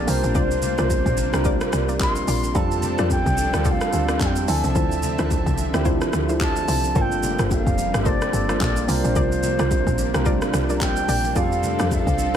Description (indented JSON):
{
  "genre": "amapiano",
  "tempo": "109 BPM",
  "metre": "4/4",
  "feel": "swing 58% on 16ths",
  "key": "unclear",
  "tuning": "A4 = 440 Hz",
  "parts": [
    { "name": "bright reedy bansuri", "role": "melody", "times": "0.0-12.4 s", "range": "C5 to C6", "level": "-26 LUFS", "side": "right 1 dB", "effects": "digital delay" },
    { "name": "tine electric piano", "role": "accompaniment", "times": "0.0-12.4 s", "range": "E3 to Bb4", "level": "-27 LUFS", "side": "right 4 dB", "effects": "phaser" },
    { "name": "lush unison pad", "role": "sustained chords", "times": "0.0-12.4 s", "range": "C3 to E5", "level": "-30 LUFS", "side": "left 1 dB", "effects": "chorus, sidechain pumping" },
    { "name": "soft round pluck", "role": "stabs", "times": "0.0-11.9 s", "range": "E4 to D5", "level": "-30 LUFS", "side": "left 1 dB", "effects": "chorus, digital delay" },
    { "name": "woody log drum bass", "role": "bass", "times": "0.0-12.4 s", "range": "F1 to F2", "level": "-24 LUFS", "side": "left 1 dB", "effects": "none" },
    { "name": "deep house drum kit", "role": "drums", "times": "0.1-12.4 s", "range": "handclaps, hi-hat, kick drum, rim click, shaker", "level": "-24 LUFS", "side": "equal", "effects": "none" },
    { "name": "bongos and congas", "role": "percussion", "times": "0.2-12.4 s", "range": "none", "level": "-32 LUFS", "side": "left 4 dB", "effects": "none" }
  ],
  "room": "little or no reverb",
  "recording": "none",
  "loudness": "-18 LUFS",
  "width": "side -9 dB against mid",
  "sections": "0.0-12.4 A section",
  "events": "none",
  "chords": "0.1 C9sus4; 2.6 F6; 4.5 Dm9; 7.0 Gm11; 8.9 C9sus4; 11.4 F6"
}